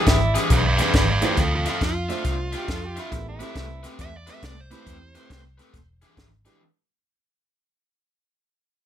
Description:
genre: electric blues shuffle.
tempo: 138 BPM.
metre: 4/4.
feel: swing 65% on 8ths.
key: A minor.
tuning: A4 = 441 Hz.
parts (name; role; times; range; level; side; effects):
overdriven harmonica; second line; 0.0-3.9 s; E4 to A4; -30 LUFS; right 1 dB; digital delay.
dark upright piano; accompaniment; 0.0-6.6 s; G#3 to B5; -33 LUFS; right 5 dB; none.
overdriven semi-hollow guitar; riff; 0.0-6.6 s; E3 to E5; -28 LUFS; left 2 dB; none.
vintage muted fingered electric bass; bass; 0.1-6.5 s; E1 to F2; -26 LUFS; equal; none.
compact cocktail drum kit; drums; 0.1-6.5 s; hi-hat, kick drum, snare drum; -24 LUFS; equal; none.
dark smooth lead guitar; melody; 0.5-5.4 s; F4 to E5; -26 LUFS; right 3 dB; overdrive.
room: light reverb.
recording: none.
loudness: -20 LUFS.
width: side -10 dB against mid.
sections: 0.0-6.6 A section.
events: fade-out 0.0-6.6.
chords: 0.0 E7#9; 1.4 Dm9; 3.1 Am9; 5.7 E7#9.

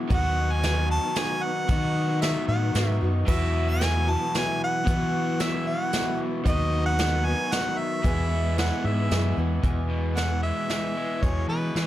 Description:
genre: folk rock and heartland rock.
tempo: 113 BPM.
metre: 3/4.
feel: straight.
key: E major.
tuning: A4 = 439 Hz.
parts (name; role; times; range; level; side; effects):
picked steel-string acoustic guitar; accompaniment; 0.0-11.9 s; E2 to G#4; -33 LUFS; left 5 dB; none.
warm concert grand piano; accompaniment; 0.0-9.6 s; F#4 to G#5; -42 LUFS; right 4 dB; none.
mellow tonewheel organ; sustained chords; 0.0-11.9 s; F#3 to B4; -37 LUFS; right 1 dB; none.
overdriven electric guitar; riff; 0.0-11.9 s; E2 to F#4; -31 LUFS; right 1 dB; none.
warm harmonica; melody; 0.1-11.9 s; B4 to A5; -29 LUFS; equal; none.
fingered electric bass; bass; 0.1-11.9 s; D#2 to E3; -25 LUFS; equal; none.
soft brush drum kit; drums; 0.1-11.9 s; crash cymbal, hi-hat, kick drum, snare drum; -28 LUFS; equal; none.
room: small room ambience.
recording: none.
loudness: -22 LUFS.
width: side -13 dB against mid.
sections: 0.0-9.6 A section; 9.6-11.9 B section.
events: none.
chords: 0.1 B/D#; 3.3 Esus2; 6.5 B/D#; 8.0 E.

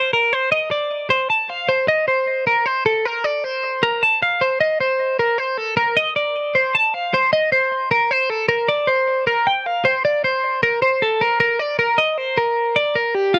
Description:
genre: rock.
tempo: 309 BPM (eighths).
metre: 7/8.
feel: straight.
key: Eb lydian.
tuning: A4 = 442 Hz.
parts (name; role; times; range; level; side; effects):
twelve-string electric guitar; solo; 0.0-13.4 s; F4 to A5; -18 LUFS; equal; tape echo.
room: light reverb.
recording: dry, close 1970s-style studio recording.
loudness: -18 LUFS.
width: mono.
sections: 0.5-11.4 A section; 11.4-13.4 B section.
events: none.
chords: none.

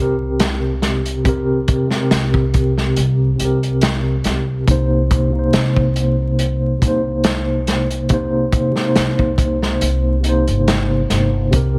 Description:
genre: trip hop.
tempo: 70 BPM.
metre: 4/4.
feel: swing 54% on 16ths.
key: C minor.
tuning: A4 = 440 Hz.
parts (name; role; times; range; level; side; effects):
mellow tine electric piano; accompaniment; 0.0-11.8 s; C3 to C5; -20 LUFS; equal; tremolo, tape echo.
upright bass; bass; 0.0-11.8 s; G1 to C2; -22 LUFS; equal; none.
crunchy breakbeat drum kit; drums; 0.4-11.8 s; hi-hat, kick drum, snare drum; -21 LUFS; equal; none.
room: studio reverb.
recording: vinyl crackle.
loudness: -17 LUFS.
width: mono.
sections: 0.0-11.8 A section.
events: none.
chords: 0.0 Gm/C; 4.7 Cm7.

